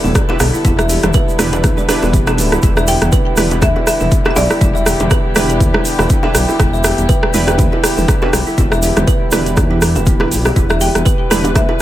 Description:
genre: afro house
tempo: 121 BPM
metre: 4/4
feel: swing 56% on 16ths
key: E minor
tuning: A4 = 440 Hz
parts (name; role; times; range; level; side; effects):
- dark chamber string section; sustained chords; 0.0-11.8 s; D3 to B4; -22 LUFS; left 1 dB; sidechain pumping
- kalimba; arpeggios; 0.0-11.8 s; B3 to E5; -21 LUFS; right 1 dB; sidechain pumping, tape echo
- warm analog keys; stabs; 0.0-11.8 s; D4 to B4; -23 LUFS; right 4 dB; chorus, sidechain pumping, tape echo
- dark detuned saw bass; bass; 0.0-11.7 s; D1 to E2; -18 LUFS; equal; sidechain pumping
- deep house drum kit; drums; 0.0-11.7 s; hi-hat, rim click, toms; -18 LUFS; equal; overdrive
- bongos; percussion; 0.0-11.8 s; none; -24 LUFS; equal; none
- egg shaker; percussion; 0.1-11.7 s; none; -26 LUFS; right 4 dB; none
- electronic kick drum; drums; 0.2-11.7 s; none; -15 LUFS; equal; overdrive
- marimba with hard mallets; melody; 2.9-5.8, 10.8-11.8 s; D5 to G5; -21 LUFS; equal; tape echo
room: light reverb, small room ambience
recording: echo-heavy mix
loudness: -11 LUFS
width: side -13 dB against mid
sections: 0.0-11.8 A section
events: none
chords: 0.0 Em7

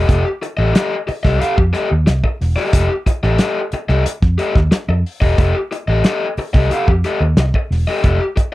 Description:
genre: funk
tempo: 90 BPM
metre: 4/4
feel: straight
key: F mixolydian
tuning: A4 = 439 Hz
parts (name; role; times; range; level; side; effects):
- raw garage guitar; accompaniment; 0.0-8.4 s; G4 to F5; -19 LUFS; left 2 dB; overdrive
- vintage muted fingered electric bass; bass; 0.0-8.2 s; E1 to F2; -16 LUFS; equal; none
- damped 70s drum kit; drums; 0.1-8.5 s; hi-hat, kick drum, snare drum; -15 LUFS; equal; none
room: little or no reverb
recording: dry, close 1970s-style studio recording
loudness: -14 LUFS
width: side -17 dB against mid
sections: 0.0-8.5 A section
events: none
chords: 0.0 F9

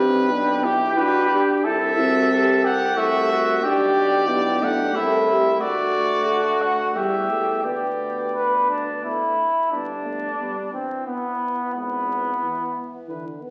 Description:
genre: classical, brass quintet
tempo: 90 BPM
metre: 3/4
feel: rubato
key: G major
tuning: A4 = 440 Hz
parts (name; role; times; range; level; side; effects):
- mellow trumpet; melody; 0.0-13.2 s; G4 to F#5; -27 LUFS; equal; none
- mellow trumpet; second line; 0.0-12.7 s; B3 to B4; -25 LUFS; equal; none
- dark euphonium; accompaniment; 0.0-13.2 s; E3 to E4; -30 LUFS; equal; none
- mellow French horn; accompaniment; 0.0-13.5 s; D3 to B4; -28 LUFS; equal; none
- clear tuba; bass; 0.0-12.3 s; G1 to E2; -32 LUFS; equal; none
room: wet recital hall reverb, RT60 1.5 s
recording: very old 78 rpm record, vinyl crackle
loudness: -21 LUFS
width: mono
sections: 0.0-9.7 A section; 9.7-13.5 B section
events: none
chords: 0.0 G/B; 1.7 Am/C; 3.0 Am6/C; 3.6 G/B; 5.0 Am/C; 5.6 D; 7.0 Em; 7.7 G/D; 9.0 D5; 9.7 G; 11.8 E/G#

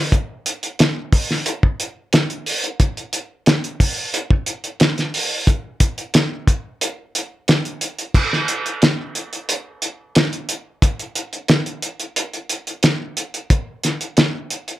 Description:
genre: blues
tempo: 90 BPM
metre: 4/4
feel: straight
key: none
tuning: none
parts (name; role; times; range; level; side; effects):
- cloth-damped thuddy drum kit; drums; 0.1-14.8 s; crash cymbal, hi-hat, kick drum, snare drum; -16 LUFS; equal; none
room: light reverb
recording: none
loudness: -18 LUFS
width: side -15 dB against mid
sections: 0.0-8.1 A section; 8.1-14.8 B section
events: none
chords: none

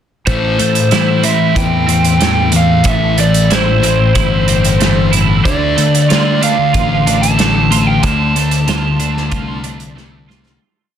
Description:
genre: quiet-loud alternative rock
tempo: 93 BPM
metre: 4/4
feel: straight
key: A minor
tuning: A4 = 440 Hz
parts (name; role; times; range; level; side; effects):
- lead guitar through a small cranked amp; melody; 0.3-9.9 s; C5 to A5; -16 LUFS; right 3 dB; overdrive
- twelve-string electric guitar; arpeggios; 0.3-10.6 s; A2 to F4; -21 LUFS; right 13 dB; ensemble chorus, digital delay
- thick fuzz guitar; riff; 0.3-10.6 s; A2 to D4; -15 LUFS; left 6 dB; distortion
- overdriven fingered electric bass; bass; 0.3-10.6 s; G1 to D3; -16 LUFS; right 1 dB; none
- loose indie drum kit; drums; 0.3-10.6 s; hi-hat, kick drum, snare drum; -18 LUFS; right 2 dB; none
room: little or no reverb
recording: dense, heavily limited modern master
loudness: -10 LUFS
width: side -9 dB against mid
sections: 0.3-10.6 verse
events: fade-out 8.0-10.6; drum fill 10.0-10.6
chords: 0.3 Am; 5.5 Dm

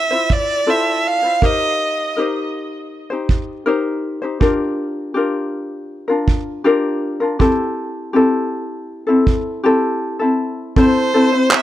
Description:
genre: acoustic pop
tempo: 80 BPM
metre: 4/4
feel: straight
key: unclear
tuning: A4 = 440 Hz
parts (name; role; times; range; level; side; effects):
- warm violin; melody; 0.0-2.2, 10.8-11.6 s; C5 to F5; -18 LUFS; right 2 dB; tape echo
- ukulele; accompaniment; 0.0-11.6 s; C4 to C5; -17 LUFS; left 2 dB; none
- soft brush drum kit; drums; 0.3-11.6 s; handclaps, kick drum; -16 LUFS; right 2 dB; none
room: little or no reverb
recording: dark, warm production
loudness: -15 LUFS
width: side -13 dB against mid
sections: 0.0-10.8 A section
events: none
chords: 0.0 Fmaj7; 1.4 Cm7/Eb; 4.4 Gm7; 7.4 Am7; 10.8 Am

